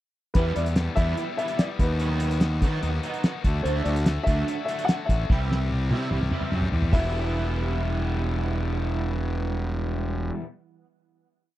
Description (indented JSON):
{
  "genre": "indie rock",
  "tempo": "146 BPM",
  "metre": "4/4",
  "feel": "straight",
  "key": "E minor",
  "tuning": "A4 = 440 Hz",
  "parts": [
    { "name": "dark upright piano", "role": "melody", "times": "0.3-10.3 s", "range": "B4 to F#5", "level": "-31 LUFS", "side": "left 2 dB", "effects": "tape echo" },
    { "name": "cloth-damped thuddy drum kit", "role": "drums", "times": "0.3-7.0 s", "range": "hi-hat, kick drum, snare drum, toms", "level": "-24 LUFS", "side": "equal", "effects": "none" },
    { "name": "crunchy overdriven guitar", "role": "riff", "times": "0.4-10.5 s", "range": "E2 to G4", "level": "-33 LUFS", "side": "left 6 dB", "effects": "none" },
    { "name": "overdriven electric guitar", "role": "riff", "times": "0.4-10.5 s", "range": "C3 to E4", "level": "-34 LUFS", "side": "right 8 dB", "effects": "ensemble chorus" },
    { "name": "fuzz fingered electric bass", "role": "bass", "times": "0.4-10.3 s", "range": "E1 to D#3", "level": "-26 LUFS", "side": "equal", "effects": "overdrive" }
  ],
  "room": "little or no reverb",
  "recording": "dry, close 1970s-style studio recording",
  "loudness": "-23 LUFS",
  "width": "side -14 dB against mid",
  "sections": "0.4-6.9 interlude; 6.9-10.2 final chord",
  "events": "drum fill 5.3-6.9",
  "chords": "0.4 Em7; 1.8 B/D#; 3.4 Dadd9; 5.3 C; 6.9 Em",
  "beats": "| 0.35 0.77 1.18 1.59 | 2.00 2.42 2.83 3.24 | 3.65 4.06 4.47 4.89 | 5.30 5.71 6.12 6.53 | 6.94 7.34 7.75 8.16 | 8.57 8.98 9.39 9.79"
}